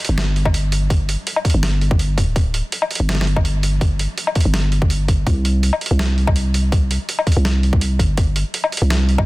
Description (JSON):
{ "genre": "half-time drum and bass", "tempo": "165 BPM", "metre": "4/4", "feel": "swing 54% on 16ths, half-time", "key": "unclear", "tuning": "A4 = 440 Hz", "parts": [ { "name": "boom bap sampler-style drum kit", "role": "drums", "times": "0.0-9.2 s", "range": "hi-hat, snare drum, woodblock", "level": "-23 LUFS", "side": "left 1 dB", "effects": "small room reverb" }, { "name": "growling 808-style bass", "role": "bass", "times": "0.1-9.3 s", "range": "D1 to C2", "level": "-17 LUFS", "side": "equal", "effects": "tube saturation" }, { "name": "electronic kick drum", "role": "drums", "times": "0.5-9.2 s", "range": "none", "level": "-17 LUFS", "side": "equal", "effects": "small room reverb" } ], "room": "digital ambience", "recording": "dense, heavily limited modern master", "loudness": "-16 LUFS", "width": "side -20 dB against mid", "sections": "0.0-9.3 A section", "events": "none", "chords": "none" }